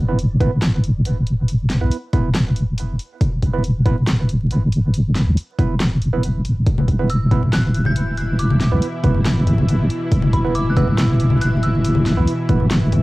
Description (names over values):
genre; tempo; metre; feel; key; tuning
deep dubstep; 139 BPM; 4/4; half-time; unclear; A4 = 441 Hz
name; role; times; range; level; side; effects
deep soft wobble bass; bass; 0.0-13.0 s; D1 to B1; -17 LUFS; equal; chorus
percussive organ stab; stabs; 0.1-12.7 s; B3 to B4; -27 LUFS; right 6 dB; chorus, cassette tape, dub echo
deep house drum kit; drums; 0.2-13.0 s; hi-hat, snare drum; -24 LUFS; equal; cassette tape
electronic kick drum; drums; 0.4-12.6 s; none; -19 LUFS; equal; cassette tape
bowed-like drone; sustained chords; 7.3-13.0 s; B2 to E4; -25 LUFS; equal; built-in reverb, vintage 12-bit sampler grit, cassette tape
congas; percussion; 6.8-13.0 s; none; -23 LUFS; left 2 dB; none
dark detuned synth bell; melody; 7.1-13.0 s; B5 to G6; -29 LUFS; right 1 dB; chorus, cassette tape, dub echo
room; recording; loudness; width
little or no reverb; home recording on cassette, vinyl crackle; -15 LUFS; side -20 dB against mid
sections
0.0-13.0 A section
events
none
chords
0.0 E5